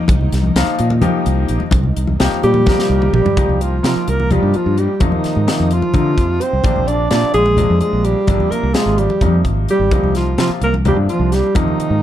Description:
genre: electric jazz fusion.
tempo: 256 BPM (eighths).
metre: 7/8.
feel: straight.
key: C minor.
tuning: A4 = 440 Hz.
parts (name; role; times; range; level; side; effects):
string machine, violins; sustained chords; 0.0-3.3 s; C3 to Eb4; -28 LUFS; equal; ensemble chorus.
fingered electric bass; bass; 0.1-12.0 s; Ab1 to D3; -17 LUFS; equal; none.
crisp fusion drum kit; drums; 0.1-11.9 s; hi-hat, kick drum, snare drum, toms; -19 LUFS; equal; none.
congas; percussion; 0.1-11.8 s; none; -21 LUFS; left 2 dB; none.
bright grand piano; accompaniment; 0.6-11.9 s; C3 to Bb4; -23 LUFS; left 5 dB; none.
breathy alto saxophone; melody; 2.4-12.0 s; Eb4 to D5; -18 LUFS; equal; plate reverb.
warm bass clarinet; second line; 2.4-12.0 s; Eb3 to D4; -22 LUFS; right 6 dB; none.
room: light reverb.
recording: dark, warm production.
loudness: -13 LUFS.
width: side -11 dB against mid.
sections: 0.0-3.4 A section; 3.4-12.0 B section.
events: drum fill 2.7-3.4.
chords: 0.0 Cm7; 5.0 F7(no3); 6.6 Bb9; 8.3 Abmaj9#11; 9.9 Cm9.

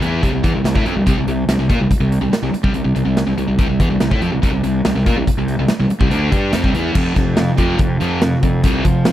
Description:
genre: classic rock.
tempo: 143 BPM.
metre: 4/4.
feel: straight.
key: C major.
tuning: A4 = 441 Hz.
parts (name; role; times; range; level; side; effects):
sludgy distorted guitar; riff; 0.0-9.1 s; F2 to G4; -18 LUFS; equal; overdrive.
fuzz fingered electric bass; bass; 0.0-9.1 s; C2 to F3; -20 LUFS; equal; overdrive.
big rock drum kit; drums; 0.0-9.1 s; crash cymbal, hi-hat, kick drum, snare drum; -18 LUFS; equal; none.
room: little or no reverb.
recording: dry, close 1970s-style studio recording.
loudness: -14 LUFS.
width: side -13 dB against mid.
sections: 0.0-7.0 A section; 7.0-9.1 B section.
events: none.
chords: 0.0 C; 7.0 F5.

